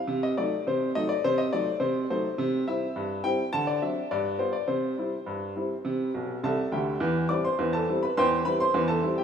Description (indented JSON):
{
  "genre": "ragtime piano",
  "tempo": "104 BPM",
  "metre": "2/4",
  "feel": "straight",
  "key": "C major",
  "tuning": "A4 = 440 Hz",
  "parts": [
    { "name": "bright upright piano", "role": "solo", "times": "0.0-9.2 s", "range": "B1 to D6", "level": "-25 LUFS", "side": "equal", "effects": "none" }
  ],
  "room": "moderate lush hall reverb, RT60 2.8 s",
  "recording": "rough home demo mix",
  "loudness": "-25 LUFS",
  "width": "side -7 dB against mid",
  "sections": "0.0-7.0 A section; 7.0-9.2 B section",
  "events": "upright piano fill 6.1-7.0",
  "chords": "0.1 Cdim7; 2.4 C; 3.5 D7; 4.1 G7; 4.7 C; 7.0 C/E",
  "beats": "| 0.08 0.65 | 1.23 1.80 | 2.38 2.95 | 3.52 4.10 | 4.68 5.26 | 5.84 6.42 | 7.00 7.58 | 8.15 8.73"
}